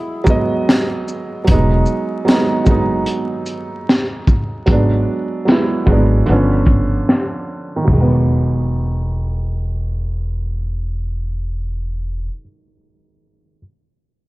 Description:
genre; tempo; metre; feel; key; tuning
lo-fi hip hop; 75 BPM; 4/4; swing 57% on 16ths; unclear; A4 = 443 Hz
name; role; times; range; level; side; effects
breathy tenor saxophone; melody; 0.0-0.7 s; E4; -32 LUFS; left 2 dB; none
felt-muted upright piano; accompaniment; 0.0-13.6 s; D3 to D#5; -18 LUFS; right 2 dB; low-pass filter
warbly tape-like pad; sustained chords; 0.0-1.4 s; G#4 to Eb6; -37 LUFS; equal; none
crunchy breakbeat drum kit; drums; 0.3-8.1 s; crash cymbal, hi-hat, kick drum, shaker, snare drum, toms; -16 LUFS; equal; none
upright bass; bass; 1.5-12.3 s; E1 to G#1; -18 LUFS; equal; none
room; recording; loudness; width
light reverb, studio ambience; vinyl crackle, low-pass filter; -15 LUFS; side -20 dB against mid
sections
0.0-1.5 A section; 1.5-7.9 B section; 7.9-11.1 C section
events
filter sweep 1.5-7.9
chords
0.0 Emaj9; 1.5 Emaj9 (rootless); 4.7 G#m7b5; 6.3 G7#11; 7.9 Emaj9

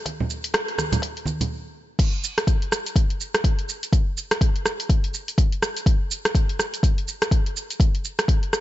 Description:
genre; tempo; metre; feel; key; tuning
house; 124 BPM; 4/4; swing 59% on 16ths; none; none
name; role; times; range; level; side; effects
deep house drum kit; drums; 0.1-8.6 s; crash cymbal, hi-hat, rim click, shaker; -25 LUFS; right 1 dB; none
electronic kick drum; drums; 0.1-8.4 s; none; -20 LUFS; equal; high-pass filter on kick, high-pass filter on room
congas; percussion; 0.1-1.5 s; none; -26 LUFS; right 2 dB; none
room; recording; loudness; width
little or no reverb; nothing above 7.6 kHz; -20 LUFS; side -15 dB against mid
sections
0.0-2.0 A section; 2.0-8.6 B section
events
build-up 0.0-2.0; stop 1.5-2.0; drop 2.0-8.6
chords
none

